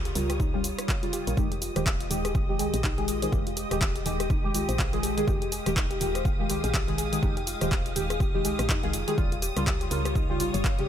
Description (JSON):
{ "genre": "deep house", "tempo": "123 BPM", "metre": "4/4", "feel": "swing 59% on 16ths", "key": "F minor", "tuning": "A4 = 440 Hz", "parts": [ { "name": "soft string machine", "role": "sustained chords", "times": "0.0-10.9 s", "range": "G3 to F5", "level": "-37 LUFS", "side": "equal", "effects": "phaser, ensemble chorus, sidechain pumping" }, { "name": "warbly dusty pluck", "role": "arpeggios", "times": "0.0-10.8 s", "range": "Eb4 to F5", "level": "-35 LUFS", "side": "left 4 dB", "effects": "chorus, sidechain pumping, tape echo" }, { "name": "woody FM bass", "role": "bass", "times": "0.0-10.9 s", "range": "Eb1 to F2", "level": "-33 LUFS", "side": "equal", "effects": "sidechain pumping" }, { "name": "soft string machine", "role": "texture", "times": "0.0-10.9 s", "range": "Eb6", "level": "-41 LUFS", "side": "right 1 dB", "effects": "ensemble chorus, sidechain pumping" }, { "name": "punchy analog drum machine", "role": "drums", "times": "0.1-10.9 s", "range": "handclaps, hi-hat, rim click, shaker", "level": "-32 LUFS", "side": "equal", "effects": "overdrive" }, { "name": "deep mellow chord stab", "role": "stabs", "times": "0.2-10.9 s", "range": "Db3 to Ab4", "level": "-31 LUFS", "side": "equal", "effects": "chorus, phaser, sidechain pumping, ping-pong delay" }, { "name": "electronic kick drum", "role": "drums", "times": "0.4-10.8 s", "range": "none", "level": "-28 LUFS", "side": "equal", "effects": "overdrive" } ], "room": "little or no reverb", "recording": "none", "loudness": "-24 LUFS", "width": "side -10 dB against mid", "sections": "0.0-10.9 A section", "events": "none", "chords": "0.0 Eb9; 1.4 Fm9; 9.2 Eb9", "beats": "0.40 0.89 | 1.38 1.86 2.35 2.84 | 3.33 3.81 4.30 4.79 | 5.28 5.76 6.25 6.74 | 7.23 7.72 8.20 8.69 | 9.18 9.67 10.15 10.64" }